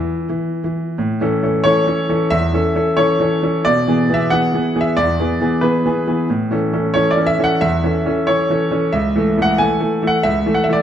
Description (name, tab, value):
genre	classical-period piano sonatina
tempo	91 BPM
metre	4/4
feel	straight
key	A major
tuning	A4 = 441 Hz
part	warm concert grand piano	solo	0.0-10.8 s	C#2 to G#5	-14 LUFS	equal	none
room	wet recital hall reverb, RT60 1.6 s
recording	none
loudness	-14 LUFS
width	side -9 dB against mid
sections	1.0-10.8 A section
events	none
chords	0.0 E5; 1.0 A; 3.6 E7/B; 6.3 A; 8.9 A/C#